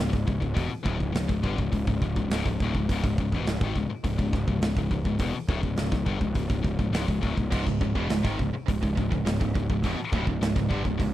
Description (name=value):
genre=heavy metal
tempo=104 BPM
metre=4/4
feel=straight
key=C# phrygian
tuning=A4 = 442 Hz
part: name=high-gain distorted guitar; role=riff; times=0.0-11.1 s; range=C#2 to D#3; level=-30 LUFS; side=left 5 dB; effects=distortion
part: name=fuzz picked electric bass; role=bass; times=0.0-11.1 s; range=C#1 to G#1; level=-29 LUFS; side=equal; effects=overdrive
part: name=big rock drum kit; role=drums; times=0.1-11.1 s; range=crash cymbal, hi-hat, kick drum, snare drum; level=-28 LUFS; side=right 1 dB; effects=none
part: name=tight distorted guitar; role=riff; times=7.5-11.1 s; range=C#2 to D#3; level=-33 LUFS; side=right 13 dB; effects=distortion
room=little or no reverb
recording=none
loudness=-24 LUFS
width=side -14 dB against mid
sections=0.0-11.1 A section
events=none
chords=0.0 C#m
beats=| 0.56 1.14 1.72 2.30 | 2.88 3.46 4.04 4.62 | 5.20 5.78 6.36 6.93 | 7.51 8.09 8.67 9.25 | 9.83 10.41 10.99